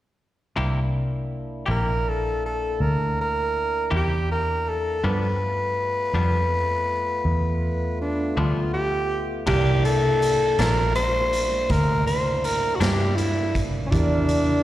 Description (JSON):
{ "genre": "slow blues", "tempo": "54 BPM (dotted quarters)", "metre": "12/8", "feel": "straight", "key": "C mixolydian", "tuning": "A4 = 437 Hz", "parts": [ { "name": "semi-hollow electric guitar", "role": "accompaniment", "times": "0.6-13.0 s", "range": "G2 to G4", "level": "-30 LUFS", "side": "left 3 dB", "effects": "tremolo, slapback echo" }, { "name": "tonewheel organ", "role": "sustained chords", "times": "0.6-14.6 s", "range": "A3 to Bb4", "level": "-35 LUFS", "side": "right 1 dB", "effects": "slow rotary speaker" }, { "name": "vintage muted fingered electric bass", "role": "bass", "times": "0.6-14.6 s", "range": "Bb1 to G2", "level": "-24 LUFS", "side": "equal", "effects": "none" }, { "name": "growling tenor saxophone", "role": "melody", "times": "1.7-14.6 s", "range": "Db4 to C5", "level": "-24 LUFS", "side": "equal", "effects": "slapback echo" }, { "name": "clear concert grand piano", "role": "accompaniment", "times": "9.5-14.6 s", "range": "Bb3 to D5", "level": "-32 LUFS", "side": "right 5 dB", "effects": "slapback echo" }, { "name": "raw garage drum kit", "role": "drums", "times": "9.5-14.5 s", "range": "crash cymbal, hi-hat, kick drum, snare drum", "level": "-27 LUFS", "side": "equal", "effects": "none" } ], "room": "small room ambience", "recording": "live gig heard through the venue's PA, recital hall reverb", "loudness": "-20 LUFS", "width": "side -14 dB against mid", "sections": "0.6-9.5 A section; 9.5-14.6 B section", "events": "none", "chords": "0.6 C7; 5.0 G7; 9.5 C9" }